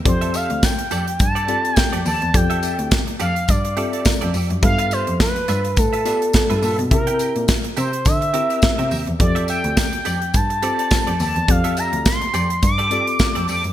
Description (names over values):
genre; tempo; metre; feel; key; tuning
early-eighties boogie funk; 105 BPM; 4/4; swing 56% on 16ths; F major; A4 = 440 Hz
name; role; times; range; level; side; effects
rich cello; bass; 0.0-13.7 s; D2 to D3; -23 LUFS; equal; none
expressive synth lead; melody; 0.1-13.6 s; A4 to D6; -22 LUFS; equal; chorus, ping-pong delay
mellow tine electric piano; accompaniment; 0.1-13.4 s; B3 to E5; -28 LUFS; left 3 dB; medium stereo tremolo
direct-recorded clean electric guitar; riff; 0.1-13.7 s; F4 to G5; -30 LUFS; right 8 dB; ensemble chorus
modern studio drum kit; drums; 0.1-13.7 s; hi-hat, kick drum, snare drum; -19 LUFS; equal; gated reverb
tambourine; percussion; 0.3-13.6 s; none; -33 LUFS; left 9 dB; none
room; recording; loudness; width
light reverb, studio ambience; bright 1980s-style digital production; -16 LUFS; side -12 dB against mid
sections
0.1-13.7 A section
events
none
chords
0.1 F69; 4.6 G13; 6.9 C7; 9.2 F69